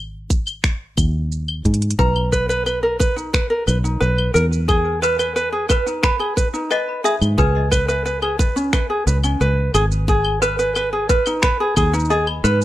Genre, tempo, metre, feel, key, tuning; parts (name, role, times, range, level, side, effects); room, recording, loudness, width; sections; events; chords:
folktronica; 89 BPM; 4/4; straight; A4 = 440 Hz
fingered electric bass; bass; 0.0-12.6 s; G#1 to G#2; -20 LUFS; equal; tube saturation
electronic kick drum; drums; 0.3-11.9 s; -19 LUFS; equal
organic electronic drum kit; drums; 0.3-12.6 s; claves, finger snaps, hi-hat, shaker; -24 LUFS; equal
toy piano; second line; 2.0-12.6 s; B4 to B5; -23 LUFS; right 1 dB; ping-pong delay, plate reverb
ukulele; arpeggios; 2.0-12.6 s; C#4 to A#5; -20 LUFS; equal; digital delay, plate reverb
light reverb; lossy compression artefacts; -16 LUFS; side -14 dB against mid
0.0-12.6 A section
drum fill 1.7-2.0
0.0 G#5; 2.0 Bmaj7(no3); 4.7 E; 7.4 C#5; 10.1 G#m